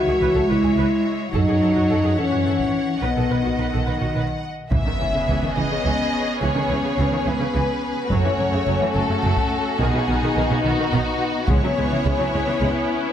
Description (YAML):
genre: cinematic, epic orchestral film score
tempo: 71 BPM (dotted quarters)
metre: 6/8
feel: straight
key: C# minor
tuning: A4 = 439 Hz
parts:
  - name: warm symphonic violin section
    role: melody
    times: 0.0-13.1 s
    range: F#4 to F#5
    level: -27 LUFS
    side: left 3 dB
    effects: none
  - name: rich symphonic violin section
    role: second line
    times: 0.0-13.1 s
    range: C#4 to D#5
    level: -28 LUFS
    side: left 1 dB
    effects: none
  - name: mellow French horn section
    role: sustained chords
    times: 0.0-13.1 s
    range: A3 to F#4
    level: -25 LUFS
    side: left 3 dB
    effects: none
  - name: rich symphonic cello section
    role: bass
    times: 0.0-12.7 s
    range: F#2 to G#3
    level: -26 LUFS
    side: right 3 dB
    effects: none
  - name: clear symphonic viola section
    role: accompaniment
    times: 0.1-13.1 s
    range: C#3 to B4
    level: -28 LUFS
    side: right 1 dB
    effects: none
  - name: warm studio double bass section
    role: bass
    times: 0.1-12.7 s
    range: F#1 to F#2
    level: -25 LUFS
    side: right 2 dB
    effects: none
  - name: taiko ensemble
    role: drums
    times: 1.3-12.6 s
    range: none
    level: -26 LUFS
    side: equal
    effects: none
  - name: impact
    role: sound effects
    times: 4.7-6.4 s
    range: none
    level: -33 LUFS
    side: equal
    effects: none
room: moderate scoring stage reverb, RT60 1.9 s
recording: close, detailed microphones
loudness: -18 LUFS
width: side -10 dB against mid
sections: 0.0-4.7 A section; 4.7-13.1 A section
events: impact 4.7-6.4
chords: 0.0 C#m7; 1.3 F#m; 3.0 B; 4.7 C#m7; 8.1 F#m; 9.8 B; 11.5 C#m7